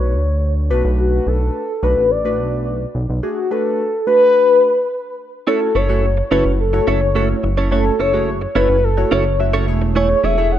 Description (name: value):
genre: pop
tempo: 107 BPM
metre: 4/4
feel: straight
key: F# minor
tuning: A4 = 441 Hz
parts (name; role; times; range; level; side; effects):
- mellow horn-like synth lead; melody; 0.0-10.6 s; F#4 to F#5; -17 LUFS; left 1 dB; chorus, phaser, digital delay
- glassy digital keys; accompaniment; 0.0-10.6 s; A3 to E5; -23 LUFS; equal; chorus
- chorused synth bass; bass; 0.0-10.6 s; E1 to D2; -18 LUFS; equal; none
- direct-recorded clean electric guitar; riff; 5.5-10.5 s; A3 to C#5; -22 LUFS; right 4 dB; analog chorus
room: moderate plate reverb, RT60 2.2 s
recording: rough home demo mix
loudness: -14 LUFS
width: side -11 dB against mid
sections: 0.0-5.5 A section; 5.5-10.6 B section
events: none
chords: 0.0 D6; 0.7 Bm7; 5.5 F#m7; 9.7 Amaj7/E